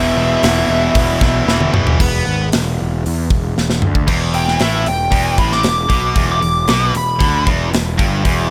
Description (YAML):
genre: hard rock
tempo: 115 BPM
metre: 4/4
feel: straight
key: unclear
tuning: A4 = 440 Hz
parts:
  - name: bluesy overdriven lead guitar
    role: melody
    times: 0.0-7.5 s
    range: E5 to D6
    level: -21 LUFS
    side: equal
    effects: distortion
  - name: raw garage guitar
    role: riff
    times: 0.0-2.0 s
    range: E2 to B3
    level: -24 LUFS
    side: equal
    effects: overdrive
  - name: tight distorted guitar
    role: riff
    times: 0.0-8.5 s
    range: E2 to B3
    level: -22 LUFS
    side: equal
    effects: distortion
  - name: fuzz picked electric bass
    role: bass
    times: 0.0-8.5 s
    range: E1 to E2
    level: -21 LUFS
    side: equal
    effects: overdrive
  - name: tight metal drum kit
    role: drums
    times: 0.4-8.4 s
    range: crash cymbal, hi-hat, kick drum, snare drum, toms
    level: -20 LUFS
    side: equal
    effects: none
room: small room ambience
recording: none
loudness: -15 LUFS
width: mono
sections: 0.0-2.0 A section; 2.0-4.1 B section; 4.1-8.5 C section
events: drum fill 1.5-2.0, 3.6-4.1; lead electric guitar solo 4.1-8.5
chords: 0.0 E5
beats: 0.43 0.95 1.47 | 1.99 2.51 3.04 3.56 | 4.08 4.60 5.12 5.64 | 6.16 6.69 7.21 7.73 | 8.25